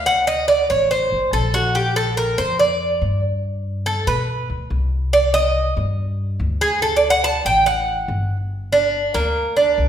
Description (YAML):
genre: latin, Cuban son and guajira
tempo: 142 BPM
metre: 4/4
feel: straight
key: G minor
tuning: A4 = 439 Hz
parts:
  - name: Cuban tres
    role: arpeggios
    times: 0.0-9.9 s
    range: Bb3 to A5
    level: -17 LUFS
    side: right 1 dB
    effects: none
  - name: upright bass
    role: bass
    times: 0.0-9.9 s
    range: G1 to B2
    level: -23 LUFS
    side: left 1 dB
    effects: none
room: wet recital hall reverb, RT60 1.3 s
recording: recorded in a church or concert hall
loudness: -17 LUFS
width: side -9 dB against mid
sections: 0.0-8.5 A section; 8.5-9.9 B section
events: Cuban tres solo 0.0-8.5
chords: 0.1 D5; 1.8 Bb; 3.4 G; 5.1 Cm; 6.8 D; 8.5 Gm